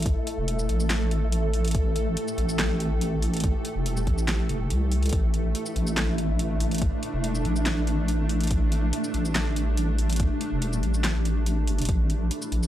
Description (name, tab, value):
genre	deep dubstep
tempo	142 BPM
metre	4/4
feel	half-time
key	unclear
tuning	A4 = 440 Hz
part	granular cloud pad	sustained chords	0.0-12.7 s	A3 to A4	-30 LUFS	equal	built-in reverb
part	deep soft wobble bass	bass	0.0-12.7 s	E1 to C2	-25 LUFS	equal	chorus, transformer saturation
part	deep house drum kit	drums	0.0-12.7 s	handclaps, hi-hat, shaker, snare drum	-31 LUFS	equal	studio reverb
part	wind-like tuned noise texture	texture	0.0-12.7 s	E3 to G4	-37 LUFS	equal	built-in reverb
part	electronic kick drum	drums	0.1-12.0 s	none	-26 LUFS	equal	studio reverb
room	digital ambience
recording	dry, gritty hardware recording, transformer saturation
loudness	-23 LUFS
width	side -12 dB against mid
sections	0.0-12.7 A section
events	none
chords	0.0 A5